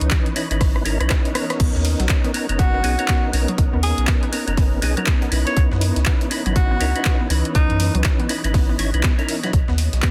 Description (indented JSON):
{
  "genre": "deep house",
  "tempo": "121 BPM",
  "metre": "4/4",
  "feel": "swing 60% on 16ths",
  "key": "unclear",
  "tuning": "A4 = 439 Hz",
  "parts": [
    { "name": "percussive tonewheel organ", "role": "stabs", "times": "0.0-9.5 s", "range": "E3 to C#5", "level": "-28 LUFS", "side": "equal", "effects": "chorus vibrato, fast rotary speaker, sidechain pumping, tape echo" },
    { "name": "round analog bass", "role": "bass", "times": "0.0-10.0 s", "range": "F#1 to F#2", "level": "-23 LUFS", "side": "equal", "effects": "sidechain pumping" },
    { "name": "house drum kit", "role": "drums", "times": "0.0-10.1 s", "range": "crash cymbal, handclaps, hi-hat, rim click", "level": "-28 LUFS", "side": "equal", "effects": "soft clipping on snare" },
    { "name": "granular cloud pad", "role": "texture", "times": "0.0-10.1 s", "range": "E3 to D#5", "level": "-36 LUFS", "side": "equal", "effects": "built-in reverb, sidechain pumping" },
    { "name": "breakbeat sampler-style drum kit", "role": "drums", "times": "0.1-10.1 s", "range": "hi-hat, snare drum", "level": "-38 LUFS", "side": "equal", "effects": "none" },
    { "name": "electronic kick drum", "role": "drums", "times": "0.1-10.1 s", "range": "none", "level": "-21 LUFS", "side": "equal", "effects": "none" },
    { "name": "analog pluck", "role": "arpeggios", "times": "1.6-10.1 s", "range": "F#3 to B3", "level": "-34 LUFS", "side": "equal", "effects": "chorus, sidechain pumping, tape echo" },
    { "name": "bright alto saxophone", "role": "melody", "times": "2.6-7.9 s", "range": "D#4 to C#5", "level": "-30 LUFS", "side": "equal", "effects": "tape echo" }
  ],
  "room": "digital ambience",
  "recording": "dense, heavily limited modern master",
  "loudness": "-19 LUFS",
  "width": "mono",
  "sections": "0.0-10.1 A section",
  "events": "drum fill 0.6-1.6",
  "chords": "0.0 C#m9; 1.6 Bmaj9; 5.6 C#m9; 9.5 Bmaj9"
}